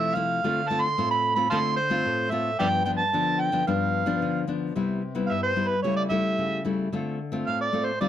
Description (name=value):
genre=samba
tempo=111 BPM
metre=4/4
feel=straight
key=unclear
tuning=A4 = 439 Hz
part: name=overdriven harmonica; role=melody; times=0.0-8.1 s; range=B4 to C6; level=-25 LUFS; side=right 3 dB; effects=plate reverb
part: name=nylon-string guitar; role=accompaniment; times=0.0-8.1 s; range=G2 to F4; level=-26 LUFS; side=left 3 dB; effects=none
room=moderate studio reverb, RT60 0.5 s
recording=none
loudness=-23 LUFS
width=side -10 dB against mid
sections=0.0-4.8 A section; 4.8-8.1 B section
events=none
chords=0.4 Dm7; 2.6 G7; 4.8 Cmaj7; 5.8 A7/C#; 6.9 Dm7